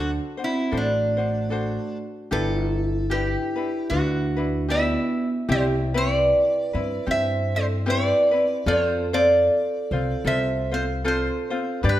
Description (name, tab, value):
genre	Hawaiian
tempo	76 BPM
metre	4/4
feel	swing 58% on 8ths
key	G major, C major from 5.5 s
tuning	A4 = 440 Hz
part	lap resonator guitar	melody	0.0-12.0 s	D4 to E5	-23 LUFS	equal	none
part	vibraphone with soft mallets	second line	0.0-12.0 s	A3 to C5	-29 LUFS	right 4 dB	none
part	ukulele	accompaniment	0.0-12.0 s	C4 to D5	-28 LUFS	left 4 dB	none
part	upright bass	bass	0.0-12.0 s	G1 to G2	-26 LUFS	equal	none
room	wet recital hall reverb, RT60 1.4 s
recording	none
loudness	-20 LUFS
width	side -13 dB against mid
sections	0.0-5.5 A section; 5.5-12.0 B section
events	none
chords	0.0 D7; 2.3 G6; 5.5 Cmaj7; 8.7 F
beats	0.73 1.52 | 2.32 3.11 3.91 4.70 | 5.50 6.29 7.08 7.88 | 8.67 9.46 10.26 11.05 | 11.85